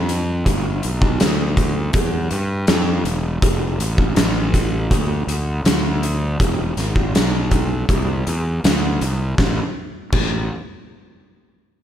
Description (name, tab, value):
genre	blues rock power trio and southern rock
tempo	81 BPM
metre	4/4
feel	straight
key	unclear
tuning	A4 = 440 Hz
part	fuzz fingered electric bass	bass	0.0-10.5 s	E1 to G2	-21 LUFS	equal	overdrive
part	oversized low-tuned drum kit	drums	0.1-10.3 s	crash cymbal, hi-hat, kick drum, snare drum	-19 LUFS	equal	none
room	little or no reverb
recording	none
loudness	-17 LUFS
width	side -10 dB against mid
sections	0.0-9.4 A section; 9.4-11.8 B section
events	none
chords	none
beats	| 0.46 1.20 1.94 2.68 | 3.43 4.17 4.91 5.66 | 6.40 7.15 7.89 8.64 | 9.38 10.12